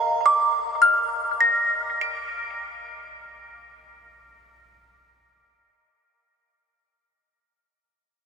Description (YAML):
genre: classical, lullaby for music box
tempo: free time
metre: none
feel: none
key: Bb major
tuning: A4 = 440 Hz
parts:
  - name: music box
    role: solo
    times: 0.0-6.1 s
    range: Bb4 to D7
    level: -20 LUFS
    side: equal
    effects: analog delay
room: wet huge ambient reverb, RT60 6.2 s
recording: dreamy mix soaked in reverb, cassette tape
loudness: -19 LUFS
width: side -6 dB against mid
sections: 0.0-4.6 A section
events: none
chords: 0.0 Bb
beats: free time